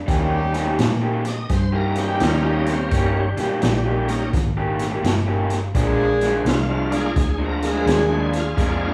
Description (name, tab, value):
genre	electric blues shuffle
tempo	85 BPM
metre	4/4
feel	swing 65% on 8ths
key	unclear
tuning	A4 = 438 Hz
part	vintage muted fingered electric bass	bass	0.0-8.9 s	G1 to Bb2	-26 LUFS	equal	none
part	raw garage guitar	riff	0.1-8.9 s	Bb2 to G4	-27 LUFS	equal	overdrive
part	dark horn section	stabs	0.1-8.4 s	G3 to Ab4	-25 LUFS	equal	none
part	swinging big-band drum kit	drums	0.1-8.8 s	hi-hat, kick drum, snare drum	-27 LUFS	equal	none
part	bright tonewheel organ	accompaniment	1.3-8.9 s	Bb2 to Eb5	-29 LUFS	equal	slow rotary speaker, overdrive, chorus vibrato
room	wet large studio reverb, RT60 0.8 s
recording	band playing live in one room, studio reverb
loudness	-20 LUFS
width	mono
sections	0.0-8.9 A section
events	none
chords	0.1 Eb7; 5.7 Bb7